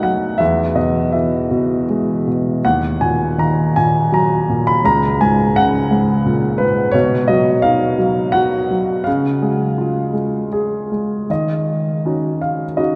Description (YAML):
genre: classical, lyrical solo piano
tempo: 76-87 BPM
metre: 3/4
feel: rubato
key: unclear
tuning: A4 = 443 Hz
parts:
  - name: warm grand piano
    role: solo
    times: 0.0-13.0 s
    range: Db2 to Cb6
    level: -17 LUFS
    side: equal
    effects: none
room: wet cathedral reverb, RT60 5.9 s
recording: in a vast, echoing space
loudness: -17 LUFS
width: mono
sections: 0.0-11.3 A section; 11.3-13.0 B section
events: none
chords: 0.4 E; 2.6 Ebm; 4.8 Gbadd9/Db; 6.9 B; 9.1 Db; 11.3 Ebm7